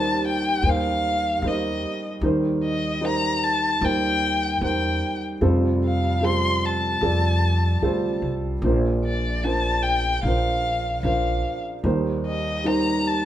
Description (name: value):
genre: acoustic folk-pop ballad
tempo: 75 BPM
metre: 4/4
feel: straight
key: C dorian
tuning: A4 = 440 Hz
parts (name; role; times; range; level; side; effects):
- dark violin; melody; 0.0-13.2 s; D5 to C6; -24 LUFS; left 2 dB; none
- dark upright piano; accompaniment; 0.0-13.2 s; F1 to D5; -24 LUFS; right 1 dB; none
- upright bass; bass; 0.0-13.2 s; Bb1 to F2; -26 LUFS; equal; none
room: wet large studio reverb, RT60 1.0 s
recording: band playing live in one room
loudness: -20 LUFS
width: side -12 dB against mid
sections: 0.0-13.2 A section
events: none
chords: 0.0 Eb6; 2.2 Cm7/Eb; 5.4 Fadd9; 8.6 Bbadd9; 11.8 Eb6